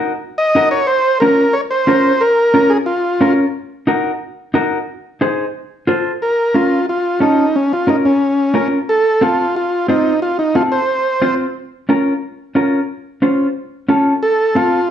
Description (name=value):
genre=latin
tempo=180 BPM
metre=4/4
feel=straight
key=Bb minor, Bb harmonic minor from 6.2 s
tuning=A4 = 441 Hz
part: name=mellow electric guitar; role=accompaniment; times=0.0-14.8 s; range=C4 to C5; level=-15 LUFS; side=equal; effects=none
part: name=combo organ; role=melody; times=0.4-3.3, 6.2-11.3, 14.2-14.9 s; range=Db4 to Eb5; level=-14 LUFS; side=equal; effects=none
room=wet studio reverb, RT60 0.9 s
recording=heard from further back in the room, nothing above 10.6 kHz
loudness=-13 LUFS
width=side -9 dB against mid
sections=0.0-6.2 A section; 6.2-14.9 B section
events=none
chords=0.0 Ebm; 0.9 Bbm; 3.5 Ebm; 4.9 Ab; 5.5 F; 6.2 Bbm; 8.9 F; 11.6 Bbm; 14.2 F